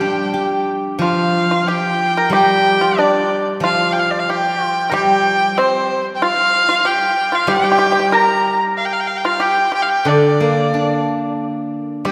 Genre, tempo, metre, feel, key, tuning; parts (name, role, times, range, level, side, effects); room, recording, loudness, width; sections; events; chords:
chinese traditional, Chinese chamber ensemble; 92 BPM; 4/4; rubato; G yu mode; A4 = 440 Hz
clear erhu; melody; 0.0-12.1 s; C5 to Bb5; -20 LUFS; equal
pipa; second line; 0.0-12.1 s; C4 to Bb4; -22 LUFS; equal
steel-string zither; accompaniment; 0.0-12.1 s; D3 to G4; -20 LUFS; equal
wet church reverb, RT60 2.8 s; recorded in a church or concert hall; -16 LUFS; mono
0.0-1.0 A section; 1.0-12.1 B section